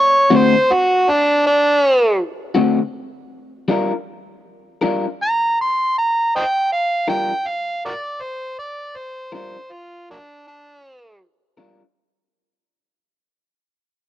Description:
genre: blues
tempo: 53 BPM (dotted quarters)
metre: 12/8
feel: straight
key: G minor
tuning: A4 = 438 Hz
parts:
  - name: overdriven harmonica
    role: melody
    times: 0.0-11.2 s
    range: F#3 to C6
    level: -16 LUFS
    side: right 1 dB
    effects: none
  - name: electric guitar through a small old amp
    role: accompaniment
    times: 0.3-11.8 s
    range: D3 to Bb4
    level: -17 LUFS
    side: left 3 dB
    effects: tremolo
room: little or no reverb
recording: dry, close 1970s-style studio recording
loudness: -15 LUFS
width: side -13 dB against mid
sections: 0.0-12.7 A section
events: fade-out 0.0-12.7; harmonica solo 0.0-12.7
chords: 0.0 D7; 3.7 Gm7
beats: 0.30 1.43 2.56 | 3.69 4.82 5.95 7.08 | 8.21 9.33 10.46 11.59

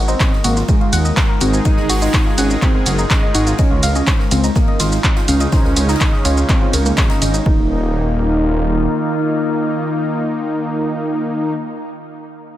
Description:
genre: melodic techno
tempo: 124 BPM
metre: 4/4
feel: straight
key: unclear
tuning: A4 = 440 Hz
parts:
  - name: evolving wavetable pad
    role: sustained chords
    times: 0.0-11.5 s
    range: Db3 to Bb4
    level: -26 LUFS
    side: left 1 dB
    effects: chorus, built-in reverb, sidechain pumping
  - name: woody wave-folded pluck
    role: arpeggios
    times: 0.0-7.7 s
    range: Bb3 to Gb6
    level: -25 LUFS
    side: left 1 dB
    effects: chorus, cassette tape, sidechain pumping, digital delay
  - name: swelling detuned saw bass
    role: bass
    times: 0.0-8.9 s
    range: Eb1 to Eb2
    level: -17 LUFS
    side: equal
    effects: sidechain pumping
  - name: wide unison lead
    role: melody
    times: 0.1-11.5 s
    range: Ab3 to Eb4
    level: -22 LUFS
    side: equal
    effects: sidechain pumping, digital delay
  - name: punchy analog drum machine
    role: drums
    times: 0.1-7.4 s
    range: handclaps, hi-hat, ride cymbal, shaker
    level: -21 LUFS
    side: right 1 dB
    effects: studio reverb
  - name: electronic kick drum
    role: drums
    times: 0.2-7.6 s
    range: none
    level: -16 LUFS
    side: equal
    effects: studio reverb
  - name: open jazz drum kit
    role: drums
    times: 0.2-7.5 s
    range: hi-hat, ride cymbal, snare drum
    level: -33 LUFS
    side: left 2 dB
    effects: sidechain pumping on cymbals, high-pass filter on cymbals, studio reverb, sidechain pumping on hats, high-pass filter on hats, high-pass filter on snare, high-pass filter on room
  - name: brassy analog pad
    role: stabs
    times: 1.4-11.5 s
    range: Db3 to Ab4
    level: -22 LUFS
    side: equal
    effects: chorus, cassette tape, sidechain pumping, digital delay
room: digital ambience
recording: none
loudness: -13 LUFS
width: side -13 dB against mid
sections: 0.0-7.5 A section; 7.5-11.3 B section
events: drop 0.0-7.5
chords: 0.0 Ab; 3.6 Dbadd9; 7.5 Ebsus2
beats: 0.20 0.69 1.17 | 1.65 2.14 2.62 3.10 | 3.59 4.07 4.56 5.04 | 5.52 6.01 6.49 6.98 | 7.46 7.94 8.43 8.91 | 9.39 9.88 10.36 10.85

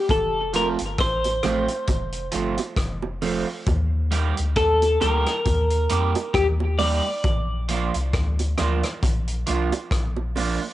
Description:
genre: roots reggae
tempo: 67 BPM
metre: 4/4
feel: swing 57% on 16ths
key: unclear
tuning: A4 = 440 Hz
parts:
  - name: clean electric guitar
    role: melody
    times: 0.0-8.5 s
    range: G4 to D5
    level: -23 LUFS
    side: left 1 dB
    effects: analog chorus, cassette tape, tape echo
  - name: soft dub sub bass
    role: bass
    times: 0.1-10.6 s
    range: F1 to F2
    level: -25 LUFS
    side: left 1 dB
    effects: none
  - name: vintage drum kit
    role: drums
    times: 0.1-10.6 s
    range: hi-hat, kick drum, rim click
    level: -27 LUFS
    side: left 1 dB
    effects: cassette tape
  - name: bongos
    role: percussion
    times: 0.1-10.6 s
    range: none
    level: -30 LUFS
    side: right 7 dB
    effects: none
  - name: electric guitar at the edge of break-up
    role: accompaniment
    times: 0.5-10.6 s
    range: F3 to G4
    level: -28 LUFS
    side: right 6 dB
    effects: phaser, cassette tape, tape echo
room: light reverb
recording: home recording on cassette, nothing above 10.9 kHz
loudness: -20 LUFS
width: side -14 dB against mid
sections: 0.0-10.7 A section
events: none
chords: 0.1 F; 3.7 Eb; 7.2 Bb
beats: | 0.10 0.99 1.88 2.77 | 3.67 4.56 5.45 6.35 | 7.24 8.13 9.03 9.92

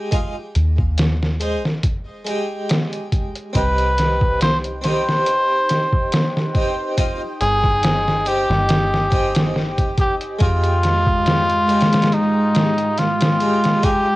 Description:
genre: trip hop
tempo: 70 BPM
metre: 4/4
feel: swing 54% on 16ths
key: C minor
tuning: A4 = 440 Hz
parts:
  - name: harpsichord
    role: accompaniment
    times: 0.0-14.1 s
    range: Ab3 to C5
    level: -26 LUFS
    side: right 1 dB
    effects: tremolo, vintage 12-bit sampler grit, cassette tape, tape echo
  - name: deep dub fingered electric bass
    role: bass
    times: 0.0-14.2 s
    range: F1 to F2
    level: -21 LUFS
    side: equal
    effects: none
  - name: trip hop sampler-style drum kit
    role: drums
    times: 0.1-14.1 s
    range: hi-hat, kick drum, snare drum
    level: -20 LUFS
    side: equal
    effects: cassette tape
  - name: trumpet with cup mute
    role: melody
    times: 3.6-14.2 s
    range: Eb4 to C5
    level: -19 LUFS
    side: equal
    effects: cassette tape, tape echo
  - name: string machine, cellos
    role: sustained chords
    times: 3.6-14.2 s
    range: Ab3 to Eb6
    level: -24 LUFS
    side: equal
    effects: ensemble chorus, cassette tape
room: light reverb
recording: home recording on cassette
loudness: -16 LUFS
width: side -18 dB against mid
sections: 0.0-14.2 A section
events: none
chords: 0.0 Fm9; 3.6 Cm; 10.4 Fm9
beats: | 0.12 0.98 1.84 2.69 | 3.55 4.41 5.27 6.12 | 6.98 7.84 8.70 9.55 | 10.41 11.27 12.12 12.98 | 13.84

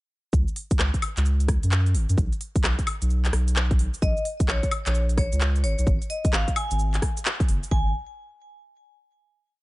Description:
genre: UK garage, two-step garage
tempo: 130 BPM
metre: 4/4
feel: swing 64% on 16ths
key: unclear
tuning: A4 = 441 Hz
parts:
  - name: soft dub sub bass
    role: bass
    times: 0.3-7.9 s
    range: F#1 to F#2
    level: -23 LUFS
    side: equal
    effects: none
  - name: house drum kit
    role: drums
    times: 0.3-7.9 s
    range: kick drum, toms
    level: -24 LUFS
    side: equal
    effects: none
  - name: house drum kit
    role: drums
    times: 0.3-7.7 s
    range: handclaps, hi-hat, rim click, shaker, woodblock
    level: -28 LUFS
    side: left 1 dB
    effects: none
  - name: vibraphone with hard mallets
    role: melody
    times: 4.0-7.9 s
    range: C#5 to G#5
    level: -31 LUFS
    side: left 1 dB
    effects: ping-pong delay
room: digital ambience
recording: nothing above 10.8 kHz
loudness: -21 LUFS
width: side -20 dB against mid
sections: 0.3-7.7 drop; 7.7-9.6 final note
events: drop 0.3-7.7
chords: 0.3 C#sus4; 2.2 N.C.; 4.0 A#m; 5.6 N.C.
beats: | 0.33 0.79 1.25 1.72 | 2.18 2.64 3.10 3.56 | 4.02 4.48 4.95 5.41 | 5.87 6.33 6.79 7.25 | 7.71

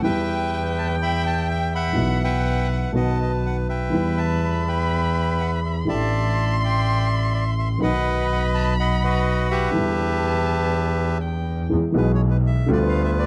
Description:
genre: tango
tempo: 124 BPM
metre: 4/4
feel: rubato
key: E minor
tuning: A4 = 442 Hz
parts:
  - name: bandoneon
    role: melody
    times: 0.0-13.3 s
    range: F4 to B5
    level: -28 LUFS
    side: equal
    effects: none
  - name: warm violin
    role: second line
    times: 0.0-11.7 s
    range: F#5 to C6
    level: -32 LUFS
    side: equal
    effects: none
  - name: dark upright piano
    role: accompaniment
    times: 0.0-13.3 s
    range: A1 to G#4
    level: -28 LUFS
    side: equal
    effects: none
  - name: clear double bass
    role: bass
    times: 0.0-13.3 s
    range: A1 to E2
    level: -25 LUFS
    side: equal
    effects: none
room: small room ambience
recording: dry, close 1970s-style studio recording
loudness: -22 LUFS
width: mono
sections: 0.0-11.7 A section; 11.7-13.3 B section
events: none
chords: 0.0 Em; 2.0 Bsus4; 2.9 B; 3.9 Em; 5.9 A7sus4; 7.8 B; 9.7 Em7; 11.7 E; 12.7 G7/D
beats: | 0.03 0.51 0.99 1.48 | 1.96 2.45 2.94 3.43 | 3.92 4.42 4.91 5.39 | 5.88 6.36 6.84 7.32 | 7.80 8.28 8.76 9.24 | 9.72 10.21 10.70 11.21 | 11.71 12.20 12.69 13.18

